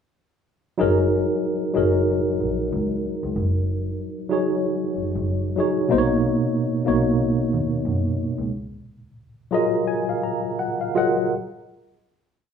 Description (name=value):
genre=R&B, neo-soul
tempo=93 BPM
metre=4/4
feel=swing 59% on 16ths, uneven beats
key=F# major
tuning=A4 = 440 Hz
part: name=tine electric piano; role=accompaniment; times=0.8-11.3 s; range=B2 to A#5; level=-21 LUFS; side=equal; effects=fast stereo tremolo
part: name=rich double bass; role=bass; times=0.8-8.5 s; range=F#1 to F#2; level=-26 LUFS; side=equal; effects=none
room=wet large studio reverb, RT60 1.1 s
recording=band playing live in one room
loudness=-20 LUFS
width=side -7 dB against mid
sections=0.8-11.3 A section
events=slowing down 5.9-11.3; tine electric piano fill 9.2-11.3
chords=0.8 F#69; 5.9 Bmaj9; 8.5 F#maj13